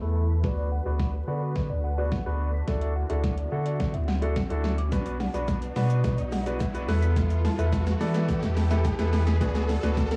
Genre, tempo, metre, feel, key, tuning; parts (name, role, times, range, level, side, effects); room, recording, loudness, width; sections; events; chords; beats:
dance-pop; 107 BPM; 4/4; straight; B minor; A4 = 439 Hz
clear concert grand piano; accompaniment; 0.0-10.1 s; A3 to B5; -36 LUFS; equal; sidechain pumping, low-pass filter, cassette tape
sweeping resonant pad; sustained chords; 0.0-10.2 s; D3 to B4; -41 LUFS; equal
thumb-piano-like synth pluck; arpeggios; 0.0-10.2 s; B4 to B6; -40 LUFS; equal; chorus, sidechain pumping, low-pass filter, cassette tape, analog delay
round analog bass; bass; 0.0-10.2 s; B1 to E3; -29 LUFS; equal; sidechain pumping
riser; sound effects; 0.3-10.2 s; -41 LUFS; equal
pop drum kit; drums; 0.4-10.2 s; hi-hat, kick drum, shaker, snare drum; -31 LUFS; equal; overdrive
tube shaker; percussion; 4.9-10.2 s; -64 LUFS; equal
little or no reverb; home recording on cassette, vinyl crackle, small room ambience; -26 LUFS; mono
0.0-10.2 A section
build-up 0.0-10.2; drum fill 0.0-10.2; grand piano fill 0.0-0.4; filter sweep 0.0-10.2; riser 0.3-10.2
0.4 Bm/D; 2.7 Dadd9; 4.9 Bm; 6.9 Esus4; 9.4 Bm/D
| 0.44 1.00 1.56 2.12 | 2.68 3.24 3.80 4.36 | 4.92 5.48 6.04 6.60 | 7.17 7.73 8.29 8.85 | 9.41 9.97